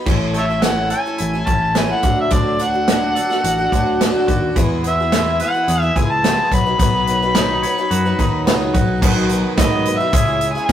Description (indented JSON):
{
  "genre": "folk rock and heartland rock",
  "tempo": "108 BPM",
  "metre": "4/4",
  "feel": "straight",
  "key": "unclear",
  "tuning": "A4 = 441 Hz",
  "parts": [
    { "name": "picked twelve-string acoustic guitar", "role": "accompaniment", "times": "0.0-10.7 s", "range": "A2 to B4", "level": "-23 LUFS", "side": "left 1 dB", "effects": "none" },
    { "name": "twangy electric guitar", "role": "riff", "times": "0.1-10.7 s", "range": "A2 to C#5", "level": "-25 LUFS", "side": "right 1 dB", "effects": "none" },
    { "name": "picked electric bass", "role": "bass", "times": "0.1-10.7 s", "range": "A1 to G#2", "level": "-22 LUFS", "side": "equal", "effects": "none" },
    { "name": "natural country drum kit", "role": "drums", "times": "0.1-10.7 s", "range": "crash cymbal, hi-hat, kick drum, snare drum", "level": "-18 LUFS", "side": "equal", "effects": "none" },
    { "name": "overdriven harmonica", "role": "melody", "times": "0.4-10.7 s", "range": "A4 to B5", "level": "-19 LUFS", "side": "left 1 dB", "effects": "none" },
    { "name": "egg shaker", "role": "percussion", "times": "9.0-10.6 s", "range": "none", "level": "-37 LUFS", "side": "right 4 dB", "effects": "none" },
    { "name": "dark studio string section", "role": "sustained chords", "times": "9.1-10.7 s", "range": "D#4 to C#5", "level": "-32 LUFS", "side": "right 1 dB", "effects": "none" }
  ],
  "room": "light reverb",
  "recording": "rough rehearsal-room recording, tube saturation",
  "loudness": "-14 LUFS",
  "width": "side -10 dB against mid",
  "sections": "0.1-9.0 A section; 9.0-10.7 B section",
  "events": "none",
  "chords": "0.1 A; 2.0 D; 4.6 E; 6.5 Badd9; 9.0 B; 10.1 C#m"
}